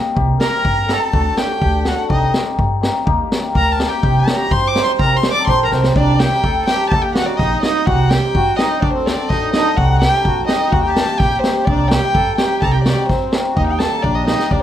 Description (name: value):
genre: klezmer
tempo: 126 BPM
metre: 2/4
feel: straight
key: C dorian sharp4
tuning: A4 = 440 Hz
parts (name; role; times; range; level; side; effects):
- cimbalom; accompaniment; 0.0-14.6 s; A3 to Bb4; -21 LUFS; left 5 dB; none
- upright bass; bass; 0.2-14.6 s; A1 to G2; -19 LUFS; right 1 dB; none
- street-band drum kit; drums; 0.2-14.6 s; kick drum, snare drum; -19 LUFS; equal; none
- dark violin; melody; 0.4-14.6 s; C5 to D6; -20 LUFS; equal; plate reverb
- accordion; second line; 0.4-14.6 s; C4 to D5; -21 LUFS; right 5 dB; none
room: moderate small room reverb, RT60 0.5 s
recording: none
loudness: -13 LUFS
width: side -11 dB against mid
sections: 0.0-6.0 A section; 6.0-13.6 B section; 13.6-14.6 C section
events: speeding up 0.0-14.6; violin solo 0.0-6.0; drum fill 5.7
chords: 0.2 Cm; 1.1 D; 2.1 Cm; 3.1 Eb; 4.0 Cm; 6.9 Eb; 7.9 Cm; 8.8 D; 9.8 Cm; 10.7 Eb; 11.7 Cm; 13.6 Eb